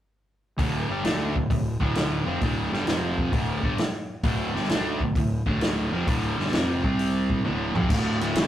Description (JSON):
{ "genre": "blues rock power trio and southern rock", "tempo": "131 BPM", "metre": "4/4", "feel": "swing 68% on 8ths", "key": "D minor", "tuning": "A4 = 440 Hz", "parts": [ { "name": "overdriven electric guitar", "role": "riff", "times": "0.6-8.5 s", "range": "D2 to D4", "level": "-26 LUFS", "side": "equal", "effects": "none" }, { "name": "fuzz fingered electric bass", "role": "bass", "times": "0.6-8.5 s", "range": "D1 to D2", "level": "-32 LUFS", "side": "equal", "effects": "overdrive" }, { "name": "vintage drum kit", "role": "drums", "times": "0.6-8.5 s", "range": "crash cymbal, hi-hat, kick drum, ride cymbal, snare drum, toms", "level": "-26 LUFS", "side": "equal", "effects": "none" } ], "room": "moderate studio reverb, RT60 0.5 s", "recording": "rough rehearsal-room recording, tube saturation", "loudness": "-23 LUFS", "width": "side -12 dB against mid", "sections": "0.6-7.9 A section", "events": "drum fill 7.4-7.9", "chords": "0.6 Dm; 2.9 F5; 3.3 Dm; 6.8 C5; 7.4 Dm; 7.9 D5", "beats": "| 0.58 1.04 1.50 1.95 | 2.41 2.87 3.33 3.78 | 4.24 4.70 5.16 5.61 | 6.07 6.53 6.99 7.44 | 7.90 8.36" }